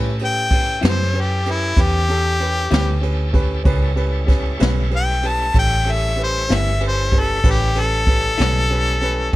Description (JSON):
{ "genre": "slow blues", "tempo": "64 BPM (dotted quarters)", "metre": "12/8", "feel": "straight", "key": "A mixolydian", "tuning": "A4 = 441 Hz", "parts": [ { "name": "electric guitar through a small old amp", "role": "accompaniment", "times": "0.0-8.6 s", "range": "A2 to E4", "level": "-26 LUFS", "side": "left 4 dB", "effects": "tremolo" }, { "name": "warm upright piano", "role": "accompaniment", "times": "0.0-9.4 s", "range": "C#4 to B4", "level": "-27 LUFS", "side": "right 1 dB", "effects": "none" }, { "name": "bright tonewheel organ", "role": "sustained chords", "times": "0.0-9.4 s", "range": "E3 to A4", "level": "-31 LUFS", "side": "equal", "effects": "slow rotary speaker, overdrive" }, { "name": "vintage muted fingered electric bass", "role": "bass", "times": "0.0-9.4 s", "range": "G1 to A2", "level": "-20 LUFS", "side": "equal", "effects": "none" }, { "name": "bright harmonica", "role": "melody", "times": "0.2-9.4 s", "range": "E4 to A5", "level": "-20 LUFS", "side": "left 2 dB", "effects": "overdrive" }, { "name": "jazz brush drum kit", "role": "drums", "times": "0.2-9.4 s", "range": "kick drum, ride cymbal, snare drum", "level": "-21 LUFS", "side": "equal", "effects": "none" } ], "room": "little or no reverb", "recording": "none", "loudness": "-16 LUFS", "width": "side -17 dB against mid", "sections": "0.0-9.4 A section", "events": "harmonica solo 0.0-9.4", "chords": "0.0 A7" }